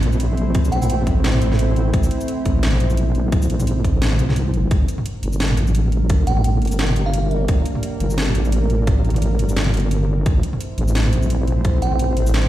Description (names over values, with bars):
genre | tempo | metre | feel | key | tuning
half-time drum and bass | 173 BPM | 4/4 | swing 57% on 16ths, half-time | G dorian | A4 = 437 Hz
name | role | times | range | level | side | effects
dark analog pad | sustained chords | 0.0-12.5 s | G3 to C5 | -26 LUFS | right 1 dB | chorus, sidechain pumping
deep soft wobble bass | bass | 0.0-12.5 s | G1 to C2 | -18 LUFS | equal | chorus
drum and bass drum kit | drums | 0.0-12.5 s | hi-hat, shaker, snare drum, toms | -25 LUFS | equal | overdrive
electronic kick drum | drums | 0.5-11.7 s | none | -18 LUFS | equal | overdrive
glassy synth bell | melody | 0.7-0.9, 6.3-7.4, 11.8-12.0 s | F5 to G5 | -29 LUFS | right 2 dB | chorus, dub echo
room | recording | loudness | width
digital ambience | played on a big sound system in a bare room, large studio reverb | -16 LUFS | side -14 dB against mid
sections
0.0-4.7 A section; 4.7-12.5 A section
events
drop 0.0-4.7, 4.7-12.5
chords
0.0 Am; 4.7 Gm; 10.3 Am